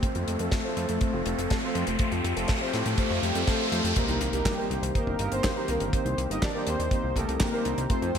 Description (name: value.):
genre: italo disco.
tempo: 122 BPM.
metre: 4/4.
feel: straight.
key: C dorian.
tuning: A4 = 441 Hz.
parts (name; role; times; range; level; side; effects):
warm analog pad; sustained chords; 0.0-8.2 s; Eb3 to A4; -34 LUFS; left 1 dB; lush chorus.
warbly dusty pluck; arpeggios; 0.0-8.2 s; A3 to C5; -35 LUFS; left 4 dB; chorus, ping-pong delay.
analog synth brass; stabs; 0.0-8.2 s; A3 to C5; -34 LUFS; right 2 dB; chorus, cassette tape.
damped 70s drum kit; drums; 0.0-8.2 s; crash cymbal, handclaps, hi-hat, snare drum; -34 LUFS; left 2 dB; high-pass filter on hats, high-pass filter on cymbals, high-pass filter on snare, high-pass filter on room, gated reverb.
kick drum; drums; 0.0-8.0 s; none; -28 LUFS; equal; none.
riser, noise sweep and impact; sound effects; 0.0-5.9 s; none; -33 LUFS; equal; none.
fat analog bass; bass; 0.2-8.2 s; F1 to A2; -31 LUFS; equal; none.
analog synth brass; melody; 3.2-8.2 s; G3 to Eb5; -31 LUFS; left 1 dB; chorus, ping-pong delay.
room: moderate lush hall reverb, RT60 1.7 s, small room ambience.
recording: bright 1980s-style digital production.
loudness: -24 LUFS.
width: side -8 dB against mid.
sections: 0.0-4.0 A section; 4.0-8.2 B section.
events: riser 0.0-4.0; filter sweep on synth arpeggio sound 0.0-4.0; filter sweep on analog polysynth 0.0-4.0; noise sweep 2.0-4.0; impact 4.0-5.9.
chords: 0.0 F; 4.0 Cm7.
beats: | 0.03 0.52 1.01 1.50 | 2.00 2.49 2.98 3.47 | 3.96 4.46 4.95 5.44 | 5.93 6.42 6.92 7.41 | 7.90.